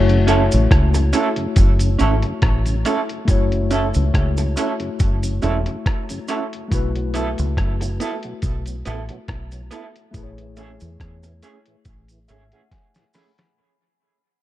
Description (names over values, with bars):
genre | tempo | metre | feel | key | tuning
lovers rock reggae | 70 BPM | 4/4 | swing 55% on 16ths | F# minor | A4 = 440 Hz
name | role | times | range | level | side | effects
tine electric piano | accompaniment | 0.0-13.6 s | A3 to B5 | -26 LUFS | left 6 dB | medium stereo tremolo, dub echo
deep dub fingered electric bass | bass | 0.0-12.5 s | E1 to E2 | -19 LUFS | equal | none
tonewheel organ | accompaniment | 0.1-13.3 s | F#2 to G#4 | -32 LUFS | right 1 dB | chorus vibrato, slow rotary speaker, dub echo
lo-fi sampler-style drum kit | drums | 0.1-13.6 s | hi-hat, kick drum, rim click, snare drum | -19 LUFS | equal | none
electric guitar through a small old amp | stabs | 0.3-13.3 s | A3 to A4 | -24 LUFS | right 5 dB | harmonic tremolo, dub echo
cabasa | percussion | 0.3-13.4 s | none | -35 LUFS | right 3 dB | none
room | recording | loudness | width
little or no reverb | dark, warm production | -17 LUFS | side -14 dB against mid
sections
0.0-13.6 A section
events
fade-out 0.0-13.6; tine electric piano fill 11.9-13.6; drum fill 12.7-13.6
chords
0.0 F#m7; 6.7 B7sus4; 10.1 Amaj7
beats
0.71 1.57 2.43 | 3.28 4.14 5.00 5.86 | 6.71 7.57 8.43 9.28 | 10.14 11.00 11.86 12.71